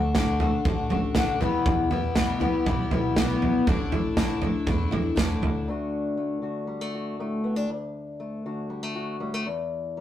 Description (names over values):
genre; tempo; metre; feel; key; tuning
indie folk with a building arrangement; 119 BPM; 4/4; straight; D major; A4 = 439 Hz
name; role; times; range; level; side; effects
picked twelve-string acoustic guitar; accompaniment; 0.0-5.7 s; E2 to F#4; -25 LUFS; left 3 dB; none
upright bass; bass; 0.0-5.7 s; A1 to E2; -30 LUFS; right 1 dB; none
natural country drum kit; drums; 0.1-5.5 s; kick drum, snare drum, toms; -26 LUFS; right 2 dB; none
fingerpicked old ladder-braced acoustic guitar; accompaniment; 5.7-10.0 s; D2 to F#4; -28 LUFS; left 2 dB; none
room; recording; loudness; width
light reverb; rough rehearsal-room recording, tube saturation; -23 LUFS; side -11 dB against mid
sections
0.0-5.7 A section; 5.7-10.0 B section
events
none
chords
0.0 D; 1.4 Em; 3.7 Asus4; 5.7 D; 9.5 N.C.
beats
0.16 0.66 1.16 | 1.66 2.16 2.67 3.17 | 3.67 4.17 4.67 5.18 | 5.68 6.18 6.69 7.19 | 7.70 8.20 8.71 9.21 | 9.71